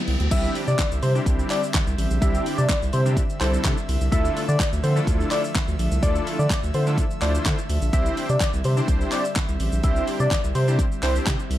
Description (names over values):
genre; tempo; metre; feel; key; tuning
dance-pop; 126 BPM; 4/4; straight; unclear; A4 = 440 Hz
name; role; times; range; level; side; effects
airy breathy pad; sustained chords; 0.0-11.6 s; D3 to E5; -32 LUFS; equal; chorus, sidechain pumping
saturated sub bass; bass; 0.1-11.6 s; A1 to D3; -23 LUFS; equal; sidechain pumping
pop drum kit; drums; 0.1-11.6 s; crash cymbal, handclaps, hi-hat, kick drum, shaker, snare drum; -24 LUFS; equal; none
fat analog lead; melody; 0.3-11.1 s; C5 to E5; -28 LUFS; equal; sidechain pumping, tape echo
big bright polysynth; accompaniment; 0.3-11.4 s; G3 to C5; -30 LUFS; left 1 dB; chorus, sidechain pumping
room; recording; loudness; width
little or no reverb; dark, warm production; -20 LUFS; side -13 dB against mid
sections
0.3-11.6 A section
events
drum fill 0.0-0.3; drop 0.3-11.6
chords
0.3 Cadd9; 4.1 Dmadd9; 7.9 Cadd9